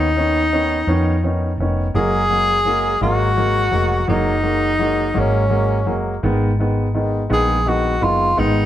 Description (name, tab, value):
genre	pop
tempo	56 BPM (dotted quarters)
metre	6/8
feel	straight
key	F# major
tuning	A4 = 440 Hz
part	bright tenor saxophone	melody	0.0-8.7 s	C#4 to G#4	-18 LUFS	left 1 dB	none
part	clear baby grand piano	accompaniment	0.0-8.6 s	D#3 to C#4	-22 LUFS	equal	none
part	woody fretless electric bass	bass	0.0-8.7 s	E#1 to E#2	-20 LUFS	equal	none
room	moderate large studio reverb, RT60 1.0 s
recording	band playing live in one room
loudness	-15 LUFS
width	side -12 dB against mid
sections	0.0-8.7 A section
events	none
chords	0.0 Badd9; 1.9 F#add9; 6.2 G#m